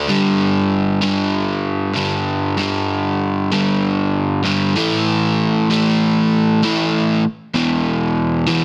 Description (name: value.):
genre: rock.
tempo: 96 BPM.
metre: 4/4.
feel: straight.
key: unclear.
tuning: A4 = 438 Hz.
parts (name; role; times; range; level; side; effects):
crunchy overdriven guitar; solo; 0.0-8.6 s; E2 to A3; -17 LUFS; equal; none.
room: light reverb.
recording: dense, heavily limited modern master.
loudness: -18 LUFS.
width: mono.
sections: 0.1-8.6 A section.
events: none.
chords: 0.1 G5; 4.8 A5; 7.6 E5.